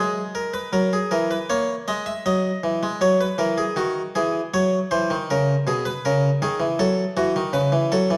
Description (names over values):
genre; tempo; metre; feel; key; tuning
classical, baroque-style two-part invention for harpsichord; 79 BPM; 4/4; straight; unclear; A4 = 443 Hz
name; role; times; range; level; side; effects
harpsichord; solo; 0.0-8.2 s; B2 to E5; -22 LUFS; equal; none
room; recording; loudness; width
moderate scoring stage reverb, RT60 1.6 s; dark, warm production; -22 LUFS; mono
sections
0.7-8.2 A section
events
none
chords
0.0 G#m; 0.7 F#7; 3.8 G#7/D#; 5.3 C#m; 6.8 F#m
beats
| 0.73 1.50 2.26 3.02 | 3.78 4.54 5.29 6.04 | 6.79 7.54